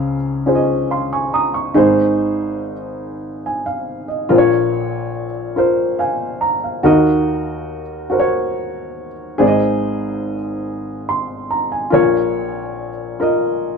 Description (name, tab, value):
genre	gospel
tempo	47 BPM (dotted quarters)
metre	6/8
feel	straight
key	unclear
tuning	A4 = 438 Hz
part	dark upright piano	solo	0.0-13.8 s	Ab1 to Eb6	-16 LUFS	equal	none
room	moderate studio reverb, RT60 0.5 s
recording	band playing live in one room, nothing above 10.7 kHz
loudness	-15 LUFS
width	side -5 dB against mid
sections	0.0-1.8 A section; 1.8-13.8 B section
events	upright piano fill 0.5-1.8, 5.6-6.9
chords	0.0 Dbmaj7; 1.8 Ab; 4.3 Bbm; 6.9 Ebm; 9.4 Ab; 11.9 Bbm